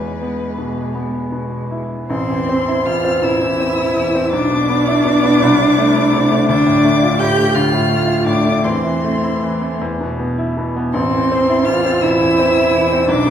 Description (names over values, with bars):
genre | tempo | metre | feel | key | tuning
classical, slow romantic movement for piano trio | 51-58 BPM (dotted quarters) | 6/8 | rubato | A minor | A4 = 440 Hz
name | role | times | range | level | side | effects
rich violin | melody | 0.0-13.3 s | B4 to G6 | -22 LUFS | left 5 dB | none
rich cello | second line | 0.0-13.3 s | G#3 to G4 | -17 LUFS | right 2 dB | none
bright baby grand piano | accompaniment | 0.0-13.3 s | A1 to F4 | -16 LUFS | equal | none
room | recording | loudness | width
wet recital hall reverb, RT60 1.4 s | heard from further back in the room | -13 LUFS | side -9 dB against mid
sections
0.0-2.1 A section; 2.1-13.3 B section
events
none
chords
0.0 E; 2.1 Am; 4.3 E5/B; 5.4 Am/C; 6.5 Dm; 8.6 Am/E; 9.8 E5; 10.9 Am